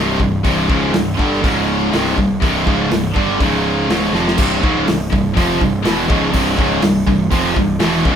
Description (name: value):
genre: heavy metal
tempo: 122 BPM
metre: 4/4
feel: straight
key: unclear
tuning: A4 = 440 Hz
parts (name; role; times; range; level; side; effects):
- distorted electric guitar; riff; 0.0-8.2 s; C2 to G3; -23 LUFS; equal; overdrive
- heavy high-gain guitar; riff; 0.0-8.2 s; C2 to G3; -18 LUFS; right 5 dB; distortion
- tight distorted guitar; riff; 0.0-8.2 s; C2 to G3; -20 LUFS; left 6 dB; distortion
- fuzz picked electric bass; bass; 0.0-8.2 s; C1 to G1; -23 LUFS; equal; overdrive
- modern studio drum kit; drums; 0.2-8.2 s; crash cymbal, hi-hat, kick drum, snare drum; -19 LUFS; equal; none
room: moderate studio reverb, RT60 0.6 s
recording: band playing live in one room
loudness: -13 LUFS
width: side -8 dB against mid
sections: 0.0-4.4 A section; 4.4-8.2 B section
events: drum fill 4.1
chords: 0.0 C5; 1.4 Db5; 1.9 C5; 3.4 Db5; 3.9 Dbmaj7; 4.4 C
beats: | 0.44 0.93 1.42 1.92 | 2.41 2.90 3.39 3.88 | 4.38 4.87 5.36 5.85 | 6.34 6.83 7.32 7.81